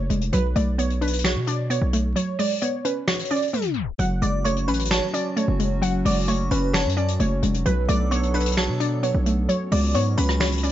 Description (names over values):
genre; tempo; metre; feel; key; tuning
hip hop, trap; 131 BPM; 4/4; half-time; F# minor; A4 = 440 Hz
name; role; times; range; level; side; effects
warbly dusty pluck; melody; 0.0-10.7 s; B4 to F#5; -28 LUFS; right 1 dB; chorus, phaser, tape echo
hollow square pluck; accompaniment; 0.0-10.7 s; F#3 to F#4; -26 LUFS; left 1 dB; chorus
distorted 808-style bass; bass; 0.0-10.7 s; E#1 to B2; -23 LUFS; equal; distortion
soft brush drum kit; drums; 0.1-10.7 s; finger snaps, hi-hat, rim click, snare drum; -28 LUFS; left 1 dB; none
hollow soft pad; sustained chords; 4.0-10.7 s; F#3 to A4; -31 LUFS; right 1 dB; chorus
delicate synth tine bell; second line; 4.2-10.7 s; A5 to D6; -33 LUFS; right 1 dB; chorus, tape echo
room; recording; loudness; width
studio ambience; vinyl crackle, tape stop, nothing above 7.5 kHz; -20 LUFS; side -12 dB against mid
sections
0.0-4.0 A section; 4.0-10.7 B section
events
break 2.2-4.0; tape stop 3.5-4.0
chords
0.3 Bm7; 2.2 C#7sus4; 4.0 F#madd9; 7.7 Bm7; 9.5 C#7sus4